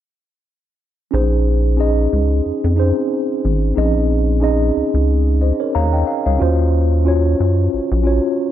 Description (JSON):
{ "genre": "R&B", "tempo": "91 BPM", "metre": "4/4", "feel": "swing 55% on 16ths", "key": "Bb minor", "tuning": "A4 = 438 Hz", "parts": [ { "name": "mellow tine electric piano", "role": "accompaniment", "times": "1.1-8.5 s", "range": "C4 to Bb5", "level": "-18 LUFS", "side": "equal", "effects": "medium stereo tremolo" }, { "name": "rubbery square bass", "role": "bass", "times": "1.1-8.2 s", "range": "Ab1 to Gb2", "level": "-16 LUFS", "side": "equal", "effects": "none" } ], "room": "light reverb, digital ambience", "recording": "none", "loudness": "-14 LUFS", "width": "side -11 dB against mid", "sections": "1.1-8.5 A section", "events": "tine electric piano fill 5.4-6.4", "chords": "1.1 Bbm9; 6.4 Ebm9", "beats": "| 1.11 1.77 2.43 3.09 | 3.75 4.41 5.07 5.73 | 6.39 7.05 7.71 8.37" }